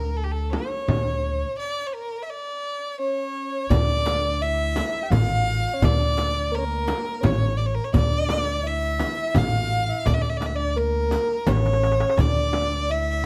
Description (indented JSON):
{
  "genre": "Arabic maqam ensemble",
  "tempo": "85 BPM",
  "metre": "3/4",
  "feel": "straight",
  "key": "D maqam suznak",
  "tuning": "A4 = 437 Hz",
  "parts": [
    { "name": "clear violin", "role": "melody", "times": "0.0-13.3 s", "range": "G4 to F#5-50c", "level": "-29 LUFS", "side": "equal", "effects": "none" },
    { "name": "upright bass", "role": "bass", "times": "0.0-13.3 s", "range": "A1 to D2", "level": "-27 LUFS", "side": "equal", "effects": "none" },
    { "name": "darbuka", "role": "percussion", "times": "0.2-12.7 s", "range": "none", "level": "-30 LUFS", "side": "equal", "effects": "none" },
    { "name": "frame drum", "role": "percussion", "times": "0.5-12.7 s", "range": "none", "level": "-30 LUFS", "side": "equal", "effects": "none" },
    { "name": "soft octave-layered synth lead", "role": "second line", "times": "3.0-13.3 s", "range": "Bb4+20c to G5", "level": "-31 LUFS", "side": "equal", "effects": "chorus" },
    { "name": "riq", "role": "percussion", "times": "3.7-13.0 s", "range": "none", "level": "-38 LUFS", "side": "equal", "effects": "none" }
  ],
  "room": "light reverb",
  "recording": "close, detailed microphones",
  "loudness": "-23 LUFS",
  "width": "mono",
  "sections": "0.0-3.7 A section; 3.7-13.3 B section",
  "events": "break 1.6-3.7; drum fill 11.5-12.2",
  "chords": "none"
}